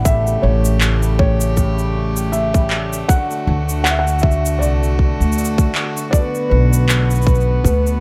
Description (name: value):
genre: folktronica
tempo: 79 BPM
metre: 4/4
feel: swing 56% on 16ths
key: unclear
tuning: A4 = 440 Hz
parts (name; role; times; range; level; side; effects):
- felt-muted upright piano; melody; 0.0-8.0 s; B4 to F#5; -25 LUFS; equal; none
- warm string quartet; sustained chords; 0.0-8.0 s; C#3 to G4; -28 LUFS; equal; vintage 12-bit sampler grit
- cimbalom; arpeggios; 0.0-8.0 s; E2 to G4; -28 LUFS; equal; digital delay
- upright bass; bass; 0.0-8.0 s; A1 to D2; -19 LUFS; equal; none
- electronic kick drum; drums; 0.1-7.8 s; none; -18 LUFS; equal; overdrive
- electronic shaker and handclaps; drums; 0.1-8.0 s; none; -24 LUFS; equal; overdrive
room: studio reverb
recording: none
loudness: -16 LUFS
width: mono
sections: 0.0-8.0 A section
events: none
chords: 0.1 A7; 3.1 D; 6.1 Bm